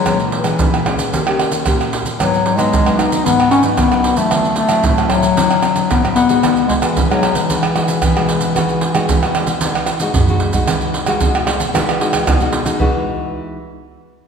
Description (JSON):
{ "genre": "samba and choro", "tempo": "113 BPM", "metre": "4/4", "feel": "straight", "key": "E major", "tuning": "A4 = 439 Hz", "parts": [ { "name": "warm bass clarinet", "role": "melody", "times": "0.0-10.1 s", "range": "E3 to D#4", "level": "-15 LUFS", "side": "left 3 dB", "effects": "none" }, { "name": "nylon-string guitar", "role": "accompaniment", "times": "0.0-13.6 s", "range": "G#2 to G4", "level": "-20 LUFS", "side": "left 2 dB", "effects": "none" }, { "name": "maracas, surdo, pandeiro and tamborim", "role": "percussion", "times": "0.1-12.9 s", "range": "none", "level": "-16 LUFS", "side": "right 3 dB", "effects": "none" } ], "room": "wet scoring stage reverb, RT60 1.9 s", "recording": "recorded in a church or concert hall", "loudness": "-13 LUFS", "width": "side -6 dB against mid", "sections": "0.0-10.7 A section; 10.7-12.8 B section; 12.8-14.3 C section", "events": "drum fill 9.9-10.7", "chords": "0.1 A#m7b5; 1.1 D#7; 2.2 G#m7; 4.3 D9; 6.4 Emaj9" }